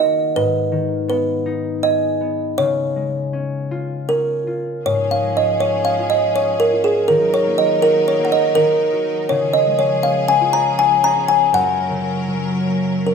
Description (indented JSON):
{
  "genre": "children's music, lullaby",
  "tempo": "80 BPM",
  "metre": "3/4",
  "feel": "rubato",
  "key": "unclear",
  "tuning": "A4 = 440 Hz",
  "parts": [
    { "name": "kalimba", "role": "melody", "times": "0.0-13.1 s", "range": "G#4 to A#5", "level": "-16 LUFS", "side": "right 1 dB", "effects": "none" },
    { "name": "concert harp", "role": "accompaniment", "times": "0.0-13.1 s", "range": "F#2 to G#4", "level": "-24 LUFS", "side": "left 4 dB", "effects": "none" },
    { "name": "clear symphonic string section", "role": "sustained chords", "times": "4.8-13.1 s", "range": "E#3 to A#4", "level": "-26 LUFS", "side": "left 1 dB", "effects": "none" }
  ],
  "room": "moderate recital hall reverb, RT60 1.5 s",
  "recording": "minimal, uncompressed stereo recording",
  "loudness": "-15 LUFS",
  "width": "side -6 dB against mid",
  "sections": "0.0-13.1 A section",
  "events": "none",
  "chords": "0.4 G#m; 2.6 C#; 7.1 D#m; 9.3 C#; 11.5 F#"
}